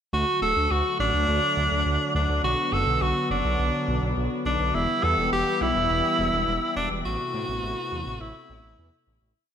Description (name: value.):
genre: synthwave.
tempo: 104 BPM.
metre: 4/4.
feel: straight.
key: D mixolydian.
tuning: A4 = 439 Hz.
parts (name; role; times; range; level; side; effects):
clear tenor saxophone; melody; 0.1-9.1 s; D4 to A4; -24 LUFS; equal; ping-pong delay.
warm analog pad; sustained chords; 0.1-9.3 s; C3 to G4; -30 LUFS; left 2 dB; wide subtle chorus.
wide detuned saw bass; bass; 0.1-9.3 s; D1 to A2; -28 LUFS; equal; chorus.
room: moderate lush hall reverb, RT60 2.0 s.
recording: bright 1980s-style digital production.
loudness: -22 LUFS.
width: side -8 dB against mid.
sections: 0.1-9.4 verse.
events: fade-out 6.3-9.4.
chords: 0.1 D; 2.4 Bm; 4.7 Em; 7.1 Amadd9.